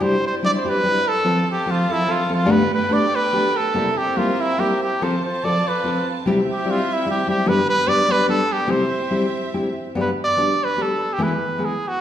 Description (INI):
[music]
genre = mexican folk, mariachi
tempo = 145 BPM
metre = 3/4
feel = swing 54% on 8ths, rubato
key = C major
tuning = A4 = 440 Hz
[part]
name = clear trumpet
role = melody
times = 0.0-12.0 s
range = E4 to D5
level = -20 LUFS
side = right 1 dB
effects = none
[part]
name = nylon-string guitar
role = accompaniment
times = 0.0-11.7 s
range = G2 to A4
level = -21 LUFS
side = left 1 dB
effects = none
[part]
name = warm chamber violin section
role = sustained chords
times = 0.0-9.9 s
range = G3 to A5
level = -29 LUFS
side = right 2 dB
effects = none
[sound]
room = wet recital hall reverb, RT60 1.4 s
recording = recorded in a church or concert hall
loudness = -17 LUFS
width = side -10 dB against mid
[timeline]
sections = 0.0-10.0 A section; 10.0-12.0 B section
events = none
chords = 0.0 Cadd9; 1.3 F; 2.5 Gadd9; 3.8 C7; 5.0 F; 6.3 C; 7.5 G; 8.7 C; 10.0 G; 11.2 E